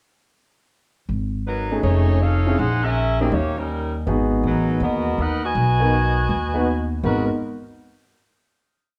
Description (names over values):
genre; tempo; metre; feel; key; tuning
jazz, big band swing; 161 BPM; 4/4; swing 66% on 8ths; G# minor; A4 = 438 Hz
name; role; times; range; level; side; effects
upright bass; bass; 1.1-7.3 s; F1 to D#2; -24 LUFS; equal; none
dark saxophone section; melody; 1.5-7.3 s; F#3 to G#5; -26 LUFS; equal; none
warm baby grand piano; accompaniment; 1.7-7.3 s; G#3 to B4; -26 LUFS; equal; none
room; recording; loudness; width
wet large studio reverb, RT60 1.1 s; heard from further back in the room; -21 LUFS; mono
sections
1.1-7.0 A section; 7.0-8.5 final chord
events
none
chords
1.1 G#m9; 1.8 F7alt; 2.6 A#m7b5; 3.3 D#7; 4.1 G#m9